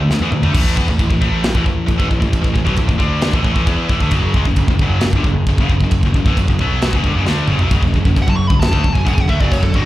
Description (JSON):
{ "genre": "heavy metal", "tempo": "134 BPM", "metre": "4/4", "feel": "straight", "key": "F# minor", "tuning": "A4 = 444 Hz", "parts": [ { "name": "heavy high-gain guitar", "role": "riff", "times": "0.0-9.8 s", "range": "F#2 to E4", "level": "-19 LUFS", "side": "left 1 dB", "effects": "distortion" }, { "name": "fuzz picked electric bass", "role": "bass", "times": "0.0-9.8 s", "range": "F#1 to E2", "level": "-18 LUFS", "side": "equal", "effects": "overdrive" }, { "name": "modern studio drum kit", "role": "drums", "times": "0.1-9.8 s", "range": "china cymbal, crash cymbal, kick drum, snare drum, toms", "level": "-16 LUFS", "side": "equal", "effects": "none" }, { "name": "high-gain lead guitar", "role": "melody", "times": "8.2-9.9 s", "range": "F#4 to C#6", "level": "-22 LUFS", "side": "left 1 dB", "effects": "distortion" } ], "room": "little or no reverb", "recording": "live gig heard through the venue's PA, club reverb", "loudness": "-13 LUFS", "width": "side -15 dB against mid", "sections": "0.0-7.7 A section; 7.7-9.9 B section", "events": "drum fill 0.1-0.5, 7.3-7.7; lead electric guitar solo 7.7-9.9", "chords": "0.0 D5; 0.5 A5; 4.1 F#5; 7.7 F#m" }